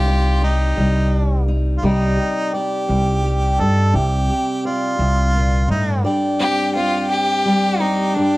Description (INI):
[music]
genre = acoustic folk duo or small band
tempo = 57 BPM (dotted quarters)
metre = 6/8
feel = straight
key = unclear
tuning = A4 = 440 Hz
[part]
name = clear fiddle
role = melody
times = 0.0-1.1, 6.4-8.4 s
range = D4 to G4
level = -20 LUFS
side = left 1 dB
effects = none
[part]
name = warm harmonica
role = second line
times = 0.0-8.4 s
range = Eb4 to A4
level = -23 LUFS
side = right 1 dB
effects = none
[part]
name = fingerpicked steel-string acoustic guitar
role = accompaniment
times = 0.0-8.4 s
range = G2 to Eb5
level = -21 LUFS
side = equal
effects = none
[part]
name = upright bass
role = bass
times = 0.0-6.0 s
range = C2 to G2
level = -17 LUFS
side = equal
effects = none
[sound]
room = moderate studio reverb, RT60 0.6 s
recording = worn, warbling old tape, cassette tape, warbly pitch drift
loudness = -16 LUFS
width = side -20 dB against mid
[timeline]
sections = 0.0-1.8 A section; 1.8-6.0 B section; 6.0-8.4 C section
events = fiddle solo 0.0-1.8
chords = 0.0 Cm; 1.8 Cmadd9; 6.0 G5